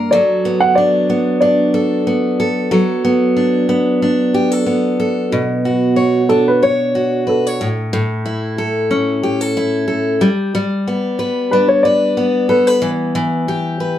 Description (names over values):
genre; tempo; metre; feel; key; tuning
pop; 92 BPM; 4/4; swing 55% on 16ths; D major; A4 = 440 Hz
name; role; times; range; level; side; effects
picked steel-string acoustic guitar; accompaniment; 0.0-14.0 s; G2 to C#5; -15 LUFS; equal; none
dark upright piano; melody; 0.1-2.3, 6.3-13.0 s; A4 to F#5; -15 LUFS; left 1 dB; none
room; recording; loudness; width
moderate studio reverb, RT60 0.5 s; none; -13 LUFS; side -11 dB against mid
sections
0.0-5.3 A section; 5.3-14.0 B section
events
none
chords
0.1 D6/F#; 5.3 Bmadd9; 7.6 A; 10.2 G; 12.8 Em